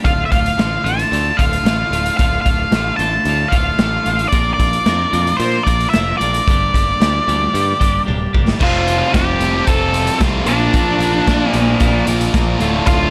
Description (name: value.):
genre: quiet-loud alternative rock.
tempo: 112 BPM.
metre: 4/4.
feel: straight.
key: unclear.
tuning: A4 = 439 Hz.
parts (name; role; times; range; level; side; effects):
octave-fuzz lead guitar; melody; 0.0-13.1 s; D4 to A5; -20 LUFS; equal; distortion.
twelve-string electric guitar; arpeggios; 0.0-13.1 s; D2 to Bb4; -26 LUFS; equal; analog delay.
raw garage drum kit; drums; 0.0-13.0 s; crash cymbal, hi-hat, kick drum, snare drum, toms; -21 LUFS; equal; none.
modern bright picked electric bass; bass; 0.1-13.1 s; D1 to Bb2; -23 LUFS; equal; none.
thick fuzz guitar; riff; 8.6-13.1 s; D2 to Bb4; -23 LUFS; equal; distortion.
thick fuzz guitar; riff; 8.6-13.1 s; D2 to Bb3; -23 LUFS; equal; distortion.
room: light reverb, studio ambience.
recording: none.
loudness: -16 LUFS.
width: mono.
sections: 0.0-8.6 A section; 8.6-13.1 B section.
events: drum fill 8.1-8.6.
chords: 0.0 Dm; 4.3 Bb; 6.5 Gm; 8.6 Fadd9; 10.5 Bb.